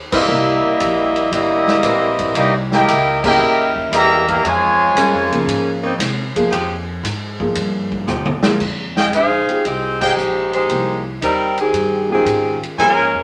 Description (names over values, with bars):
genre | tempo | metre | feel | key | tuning
jazz, big band swing | 115 BPM | 4/4 | swing 69% on 8ths | F minor | A4 = 437 Hz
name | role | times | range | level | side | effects
upright bass | bass | 0.0-13.2 s | G1 to C3 | -29 LUFS | equal | none
clear trumpet section | melody | 0.1-5.5 s | Bb3 to Bb5 | -18 LUFS | equal | none
clear trombone section | second line | 0.1-5.5 s | Db3 to G4 | -22 LUFS | equal | none
edgy saxophone section | sustained chords | 0.1-8.6 s | Db3 to D#5 | -24 LUFS | equal | none
swinging big-band drum kit | drums | 0.1-13.0 s | crash cymbal, hi-hat, kick drum, ride cymbal, snare drum, toms | -26 LUFS | equal | none
warm upright piano | accompaniment | 0.3-13.1 s | Db3 to Ab4 | -25 LUFS | equal | none
clear trumpet section | stabs | 9.0-13.0 s | Ab4 to Ab5 | -19 LUFS | equal | none
clear saxophone section | melody | 9.1-13.2 s | Eb3 to F5 | -19 LUFS | equal | none
room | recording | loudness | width
wet studio reverb, RT60 0.8 s | none | -17 LUFS | mono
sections
0.0-8.6 A section; 8.6-13.2 B section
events
band accent 0.0, 3.1, 9.9; drum fill 8.1-8.6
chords
0.3 C7#9; 4.4 Bbm9; 6.5 Fm9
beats
| 0.29 0.80 1.32 1.84 | 2.36 2.88 3.40 3.92 | 4.44 4.96 5.48 6.00 | 6.52 7.04 7.56 8.08 | 8.61 9.13 9.65 10.17 | 10.70 11.22 11.74 12.26 | 12.79